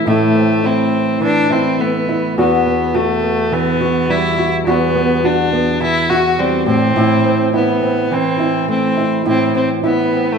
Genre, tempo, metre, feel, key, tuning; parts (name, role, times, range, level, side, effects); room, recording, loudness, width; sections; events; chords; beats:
pop; 104 BPM; 4/4; swing 60% on 16ths; A4 = 439 Hz
nylon-string guitar; accompaniment; 0.0-10.4 s; E2 to F#4; -15 LUFS; right 1 dB
rich fiddle; melody; 0.1-10.4 s; A3 to F#4; -17 LUFS; left 1 dB
wet large studio reverb, RT60 1.2 s; band playing live in one room; -13 LUFS; side -6 dB against mid
0.0-10.4 A section
0.0 Am; 2.4 Emadd9; 6.7 Am
| 0.06 0.64 1.22 1.79 | 2.37 2.94 3.52 4.09 | 4.67 5.24 5.82 6.39 | 6.96 7.54 8.11 8.69 | 9.26 9.84